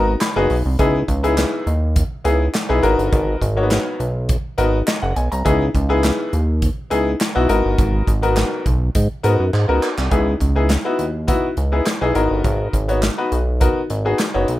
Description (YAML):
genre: early-eighties boogie funk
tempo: 103 BPM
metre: 4/4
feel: straight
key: G# minor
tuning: A4 = 440 Hz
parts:
  - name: clear grand piano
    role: accompaniment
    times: 0.0-14.5 s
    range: A#3 to B5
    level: -19 LUFS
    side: left 2 dB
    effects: plate reverb
  - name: chorused synth bass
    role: bass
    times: 0.0-14.6 s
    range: F#1 to G#2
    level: -18 LUFS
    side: equal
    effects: none
  - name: modern studio drum kit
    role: drums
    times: 0.2-14.6 s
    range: handclaps, hi-hat, kick drum, snare drum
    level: -22 LUFS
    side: equal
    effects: none
room: light reverb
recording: rough home demo mix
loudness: -16 LUFS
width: side -15 dB against mid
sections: 0.0-10.1 A section; 10.1-14.6 B section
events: grand piano fill 0.0-0.8; drum fill 9.5-10.1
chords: 0.0 G#m9; 0.8 C#m7; 2.8 G#m9; 5.5 C#m7; 7.5 G#m9; 10.1 C#m7; 12.2 G#m9